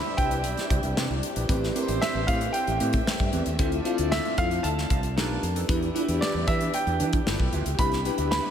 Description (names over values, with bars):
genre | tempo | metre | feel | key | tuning
polished 1980s jazz-funk pop | 114 BPM | 4/4 | straight | D dorian | A4 = 440 Hz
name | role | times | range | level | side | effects
clear baby grand piano | melody | 0.0-8.5 s | D5 to B5 | -30 LUFS | right 2 dB | slapback echo
mellow horn section | second line | 0.0-8.5 s | B3 to F5 | -38 LUFS | right 3 dB | slapback echo, digital delay
bell-like FM electric piano | accompaniment | 0.0-8.5 s | C4 to C5 | -31 LUFS | left 3 dB | phaser, wide subtle chorus
warm studio string section | sustained chords | 0.0-8.5 s | C3 to E5 | -36 LUFS | left 2 dB | none
mellow electric guitar | riff | 0.0-8.5 s | C4 to G5 | -35 LUFS | right 6 dB | lush chorus
mellow fretless electric bass | bass | 0.2-8.4 s | G1 to E3 | -29 LUFS | equal | none
modern studio drum kit | drums | 0.2-8.4 s | hi-hat, kick drum, snare drum | -28 LUFS | equal | none
room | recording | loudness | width
moderate lush hall reverb, RT60 2.2 s | big arena sound | -23 LUFS | side -9 dB against mid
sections
0.0-8.5 A section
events
none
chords
0.0 Cmaj7; 1.5 Am9; 3.6 Dm9; 5.2 B7alt; 5.7 Em7; 7.3 G13; 7.8 Cmaj7